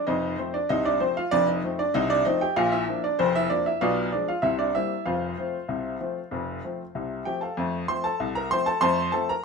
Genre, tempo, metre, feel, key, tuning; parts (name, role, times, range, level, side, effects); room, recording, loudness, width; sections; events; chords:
ragtime piano; 96 BPM; 2/4; straight; F major; A4 = 440 Hz
bright upright piano; solo; 0.0-9.4 s; F1 to C6; -23 LUFS; equal
moderate studio reverb, RT60 0.8 s; minimal, uncompressed stereo recording; -23 LUFS; side -4 dB against mid
0.0-7.6 A section; 7.6-9.4 B section
0.1 F7; 2.6 Bb; 3.8 Bdim7; 4.4 C7; 5.1 F